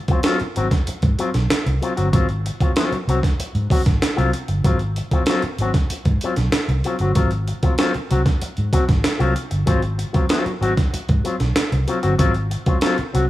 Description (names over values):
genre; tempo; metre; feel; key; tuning
funk; 95 BPM; 4/4; straight; Ab mixolydian; A4 = 440 Hz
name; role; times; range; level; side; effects
electric guitar with an envelope filter; accompaniment; 0.1-13.2 s; Gb3 to Gb4; -23 LUFS; left 3 dB; none
breakbeat sampler-style drum kit; drums; 0.1-13.3 s; hi-hat, kick drum, snare drum; -20 LUFS; right 1 dB; none
vintage muted fingered electric bass; bass; 0.4-13.3 s; G1 to Ab2; -21 LUFS; equal; none
room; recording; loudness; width
light reverb, digital ambience; small room ambience; -17 LUFS; side -15 dB against mid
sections
0.0-13.3 A section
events
none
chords
0.0 Ab6